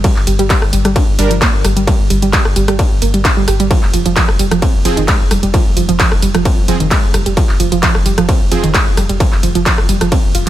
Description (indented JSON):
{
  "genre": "driving peak-time techno",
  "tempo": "131 BPM",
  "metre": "4/4",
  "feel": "straight",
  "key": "unclear",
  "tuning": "A4 = 441 Hz",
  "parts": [
    { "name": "warbly dusty pluck", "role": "riff", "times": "0.0-10.5 s", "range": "Eb3 to G4", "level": "-17 LUFS", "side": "right 4 dB", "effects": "chorus, cassette tape, sidechain pumping, digital delay" },
    { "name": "saturated sub bass", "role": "bass", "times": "0.0-10.5 s", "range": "F1 to G1", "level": "-17 LUFS", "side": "left 1 dB", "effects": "tube saturation, sidechain pumping, low-pass filter" },
    { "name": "electronic kick drum", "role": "drums", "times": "0.0-10.2 s", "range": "none", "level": "-14 LUFS", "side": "left 1 dB", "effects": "distortion, overdrive, studio reverb" },
    { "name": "techno drum kit", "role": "drums", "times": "0.0-10.5 s", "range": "handclaps, hi-hat, ride cymbal, rim click", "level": "-18 LUFS", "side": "equal", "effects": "overdrive, studio reverb" },
    { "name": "supersaw stab", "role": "stabs", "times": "1.2-1.3, 4.9-8.6 s", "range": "F3 to Bb4", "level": "-22 LUFS", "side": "right 3 dB", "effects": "sidechain pumping, ping-pong delay" }
  ],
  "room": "digital ambience",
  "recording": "none",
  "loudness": "-10 LUFS",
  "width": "side -13 dB against mid",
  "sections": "0.0-10.5 A section",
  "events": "none",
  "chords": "none",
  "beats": "| 0.04 0.50 0.96 1.42 | 1.87 2.33 2.79 3.25 | 3.71 4.16 4.62 5.08 | 5.54 6.00 6.45 6.91 | 7.37 7.83 8.29 8.74 | 9.20 9.66 10.12"
}